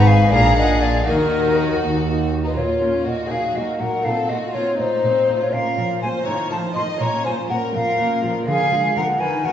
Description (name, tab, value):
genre	classical, baroque-style concerto movement with solo episodes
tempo	81 BPM (dotted quarters)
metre	6/8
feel	straight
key	Bb minor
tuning	A4 = 440 Hz
part	mellow hollow concert flute	melody	0.0-9.5 s	Bb4 to C6	-20 LUFS	left 1 dB	none
part	rich chamber violin section	melody	0.0-9.5 s	Bb3 to Bb5	-31 LUFS	left 5 dB	none
part	rich chamber violin section	second line	0.0-9.5 s	Eb4 to Eb5	-26 LUFS	left 2 dB	none
part	lute	accompaniment	0.0-9.5 s	Eb2 to Ab4	-30 LUFS	equal	none
part	rich chamber viola section	accompaniment	0.0-9.5 s	Eb3 to Eb4	-27 LUFS	left 1 dB	none
part	clear chamber double bass section	bass	0.0-2.6 s	Ab1 to Eb2	-19 LUFS	right 1 dB	none
part	warm chamber cello section	bass	0.0-9.5 s	Eb2 to Eb3	-26 LUFS	right 1 dB	none
room	wet recital hall reverb, RT60 1.6 s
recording	heard from further back in the room, nothing above 7.8 kHz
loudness	-17 LUFS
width	side -10 dB against mid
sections	0.0-2.6 A section; 2.6-9.5 B section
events	none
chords	0.3 Bb7; 1.1 Ebm; 2.6 Bbm; 3.3 Ebm/Bb; 4.1 F7/Bb; 5.5 Bbm; 6.3 F7/A; 7.0 Bbm; 8.5 Bb7/D